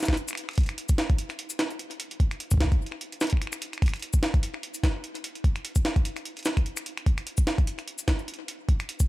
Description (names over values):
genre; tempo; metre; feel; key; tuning
IDM; 148 BPM; 4/4; swing 56% on 16ths; none; none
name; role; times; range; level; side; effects
jungle sampler-style drum kit; drums; 0.0-9.1 s; cabasa, finger snaps, hi-hat, snare drum; -31 LUFS; equal; overdrive, ping-pong delay
electronic kick drum; drums; 0.1-9.1 s; none; -22 LUFS; equal; overdrive
room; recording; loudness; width
digital ambience; none; -25 LUFS; side -18 dB against mid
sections
0.0-9.1 A section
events
none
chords
none